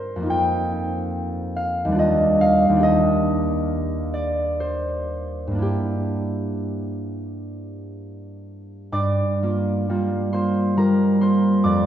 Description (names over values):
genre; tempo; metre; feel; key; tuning
classical, solo harp piece; 46-72 BPM; 3/4; rubato; G minor; A4 = 444 Hz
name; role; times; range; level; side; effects
concert harp; solo; 0.0-11.9 s; Eb2 to D6; -20 LUFS; equal; none
room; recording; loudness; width
wet church reverb, RT60 2.7 s; heard from further back in the room, nothing above 7.8 kHz; -19 LUFS; side -10 dB against mid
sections
0.0-8.9 A section; 8.9-11.9 A section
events
none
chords
0.3 F9sus4; 2.0 Ebmaj9; 2.8 Ebmaj7; 5.6 Gm6; 8.9 Gm7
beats
| 0.30 1.15 1.98 | 2.83 3.68 4.60 | 5.61 6.66 7.72 | 8.91 9.88 10.77 | 11.64